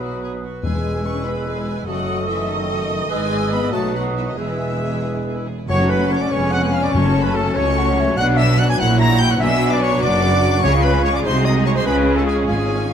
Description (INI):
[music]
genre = quick classical-period movement for symphony orchestra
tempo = 97 BPM (dotted quarters)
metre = 6/8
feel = straight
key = E major, F# minor from 5.7 s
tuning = A4 = 440 Hz
[part]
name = clear chamber violin section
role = second line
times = 0.0-12.9 s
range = G#3 to C#5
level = -31 LUFS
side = left 1 dB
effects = none
[part]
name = hollow small flute group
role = second line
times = 0.0-12.9 s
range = C#5 to E6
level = -28 LUFS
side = left 1 dB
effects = none
[part]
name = warm clarinet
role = second line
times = 0.0-12.9 s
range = G#4 to A#5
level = -26 LUFS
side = left 2 dB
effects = none
[part]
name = warm bassoon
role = accompaniment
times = 0.0-5.5 s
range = F#3 to A3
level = -29 LUFS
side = right 4 dB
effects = none
[part]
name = warm studio viola section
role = accompaniment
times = 0.0-12.9 s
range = F#3 to D#5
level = -25 LUFS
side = right 1 dB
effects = none
[part]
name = rich chamber cello section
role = bass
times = 0.0-12.9 s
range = C#2 to C#3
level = -24 LUFS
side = equal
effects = none
[part]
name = rich chamber double bass section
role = bass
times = 0.0-12.9 s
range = E1 to C#2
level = -22 LUFS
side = right 2 dB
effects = none
[part]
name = rich chamber violin section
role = melody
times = 0.6-12.9 s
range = D#5 to A#6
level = -27 LUFS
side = left 5 dB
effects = none
[part]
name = warm French horn section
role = sustained chords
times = 0.6-12.9 s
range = D#3 to F#4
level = -26 LUFS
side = left 5 dB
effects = none
[part]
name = timpani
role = percussion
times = 0.6-1.2, 5.7-7.5, 10.6-11.2 s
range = E2 to C#3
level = -26 LUFS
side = left 1 dB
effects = none
[part]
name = clear trumpet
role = stabs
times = 5.7-12.9 s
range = G#4 to A#5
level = -24 LUFS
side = right 3 dB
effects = none
[sound]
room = moderate recital hall reverb, RT60 1.5 s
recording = none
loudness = -16 LUFS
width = side -8 dB against mid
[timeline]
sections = 0.0-5.7 A section; 5.7-12.9 B section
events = none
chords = 0.0 B; 0.6 E; 1.9 D#dim/F#; 3.1 E/G#; 3.7 B7; 4.4 E; 5.7 F#m; 6.3 C#7/E#; 6.9 F#m; 8.2 Bm; 8.8 F#7/A#; 9.4 Bm; 10.6 C#; 11.3 G#7/B#; 11.9 C#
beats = 0.01 | 0.64 1.27 | 1.88 2.49 | 3.11 3.74 | 4.38 5.04 | 5.69 6.32 | 6.94 7.56 | 8.18 8.79 | 9.41 10.02 | 10.64 11.26 | 11.87 12.48